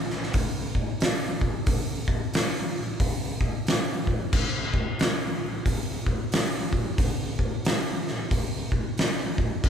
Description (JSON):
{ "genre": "metal", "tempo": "90 BPM", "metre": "4/4", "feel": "swing 61% on 8ths", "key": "none", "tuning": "none", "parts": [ { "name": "oversized low-tuned drum kit", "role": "drums", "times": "0.1-9.7 s", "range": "crash cymbal, hi-hat, kick drum, snare drum", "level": "-24 LUFS", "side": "equal", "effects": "none" } ], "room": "light reverb", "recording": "band playing live in one room", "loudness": "-24 LUFS", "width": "side -8 dB against mid", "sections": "0.0-9.7 A section", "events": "none", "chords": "none" }